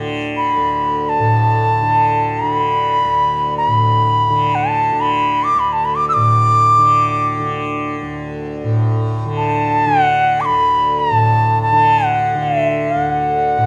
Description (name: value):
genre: indian classical, Hindustani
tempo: free time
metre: none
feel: none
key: unclear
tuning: A4 = 444 Hz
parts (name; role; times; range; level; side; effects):
- tanpura; drone; 0.0-13.7 s; D2 to D3; -22 LUFS; equal; none
- bright reedy bansuri; melody; 0.4-13.7 s; E5 to E6; -16 LUFS; equal; slapback echo
room: moderate small room reverb, RT60 0.5 s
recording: dark, warm production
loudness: -15 LUFS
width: mono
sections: 0.0-13.7 A section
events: none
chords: none